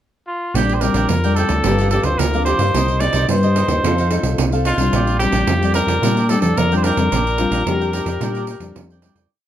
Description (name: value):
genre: samba and choro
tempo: 110 BPM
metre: 4/4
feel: straight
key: Bb major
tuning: A4 = 439 Hz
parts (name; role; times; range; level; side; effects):
- clear trumpet; melody; 0.3-9.0 s; F4 to D5; -21 LUFS; left 1 dB; plate reverb
- fat analog bass; bass; 0.5-9.3 s; G1 to Bb2; -19 LUFS; equal; none
- cavaquinho; accompaniment; 0.6-9.3 s; D4 to G5; -25 LUFS; right 5 dB; none
- nylon-string guitar; accompaniment; 0.6-9.3 s; G2 to A4; -23 LUFS; left 4 dB; none
- pandeiro; percussion; 0.6-9.3 s; none; -23 LUFS; right 6 dB; none
- growling trombone; second line; 7.4-9.0 s; F4 to G4; -26 LUFS; left 6 dB; none
room: moderate studio reverb, RT60 0.5 s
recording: none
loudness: -15 LUFS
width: side -11 dB against mid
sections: 0.0-0.6 pickup bar; 0.6-9.3 A section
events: fade-out 7.1-9.3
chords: 0.0 N.C.; 0.6 Bb69; 1.6 Gm7; 2.7 Cm7; 3.8 F7; 4.9 Bb69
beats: 0.01 | 0.56 1.10 1.65 2.20 | 2.75 3.29 3.84 4.39 | 4.93 5.48 6.03 6.57 | 7.12 7.67 8.21 8.76